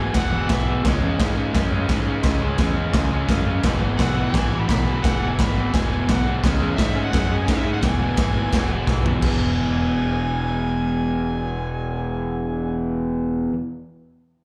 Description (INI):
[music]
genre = garage rock duo or trio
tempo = 172 BPM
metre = 4/4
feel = straight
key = E major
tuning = A4 = 440 Hz
[part]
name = overdriven harmonica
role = melody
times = 0.0-0.8, 4.0-12.8 s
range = E5 to B5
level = -32 LUFS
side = equal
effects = slapback echo
[part]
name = raw garage guitar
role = riff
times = 0.0-13.5 s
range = E2 to C#4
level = -26 LUFS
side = equal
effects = overdrive, spring reverb, slapback echo
[part]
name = growling picked electric bass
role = bass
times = 0.0-13.5 s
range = E1 to G#2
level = -27 LUFS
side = equal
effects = overdrive
[part]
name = raw garage drum kit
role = drums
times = 0.1-9.3 s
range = crash cymbal, kick drum, snare drum, toms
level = -25 LUFS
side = equal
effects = none
[sound]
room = small room ambience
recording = live gig heard through the venue's PA, club reverb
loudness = -21 LUFS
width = mono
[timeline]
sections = 0.0-9.2 A section; 9.2-12.0 B section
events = drum fill 8.9-9.2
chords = 0.0 E5; 0.8 C#m; 3.6 E; 6.4 C#m; 7.8 E